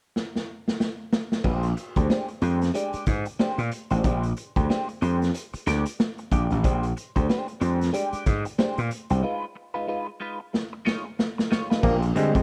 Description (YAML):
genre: funk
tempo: 92 BPM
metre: 4/4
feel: swing 60% on 16ths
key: Bb mixolydian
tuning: A4 = 440 Hz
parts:
  - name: raw garage drum kit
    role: drums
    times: 0.2-12.4 s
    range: crash cymbal, hi-hat, kick drum, snare drum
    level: -28 LUFS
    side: equal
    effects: none
  - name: clean electric guitar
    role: accompaniment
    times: 1.4-12.4 s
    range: Ab3 to D5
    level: -32 LUFS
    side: equal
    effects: wah
  - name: gritty slap bass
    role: bass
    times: 1.4-12.4 s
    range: A1 to Bb2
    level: -26 LUFS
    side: equal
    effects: overdrive
  - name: breathy trombone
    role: melody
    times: 11.8-12.4 s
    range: Ab3 to Bb3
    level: -27 LUFS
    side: equal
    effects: none
  - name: overdriven clav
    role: stabs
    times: 11.8-12.4 s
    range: Bb2 to C4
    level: -27 LUFS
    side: equal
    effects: none
room: small room reverb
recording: none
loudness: -26 LUFS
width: mono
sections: 0.0-1.4 A section; 1.4-11.8 B section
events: drum fill 0.1-1.4, 10.5-11.8; break 9.2-11.8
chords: 0.0 N.C.; 1.4 Bb13; 9.2 Db9; 11.8 Bb13